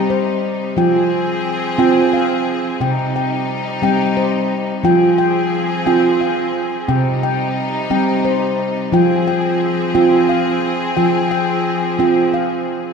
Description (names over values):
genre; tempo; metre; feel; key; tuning
world meditative, meditative tuned percussion; 59 BPM (dotted quarters); 6/8; straight; F minor; A4 = 440 Hz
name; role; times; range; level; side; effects
bright symphonic string section; sustained chords; 0.0-12.9 s; C3 to Ab4; -22 LUFS; left 1 dB; none
handpan; arpeggios; 0.0-12.9 s; C3 to G5; -15 LUFS; right 1 dB; none
room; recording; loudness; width
wet concert hall reverb, RT60 1.9 s; none; -14 LUFS; side -5 dB against mid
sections
0.0-12.9 A section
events
none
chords
0.0 Cm; 0.8 Fm; 2.8 Cm; 4.8 Fm; 6.9 Cm; 8.9 Fm